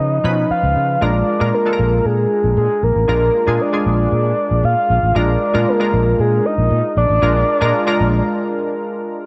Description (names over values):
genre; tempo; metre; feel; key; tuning
1980s-style pop; 116 BPM; 4/4; straight; unclear; A4 = 440 Hz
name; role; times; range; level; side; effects
soft octave-layered synth lead; melody; 0.0-8.7 s; Ab4 to F5; -20 LUFS; equal; chorus, digital delay
glassy digital keys; accompaniment; 0.0-9.3 s; F3 to Cb5; -22 LUFS; equal; chorus
sustaining fretless electric bass; bass; 0.0-8.2 s; A1 to Db3; -20 LUFS; equal; none
room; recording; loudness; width
light reverb, digital ambience; none; -16 LUFS; mono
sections
0.0-1.0 A section; 1.0-9.3 B section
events
break 8.3-9.3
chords
0.0 Db9; 1.0 Bb7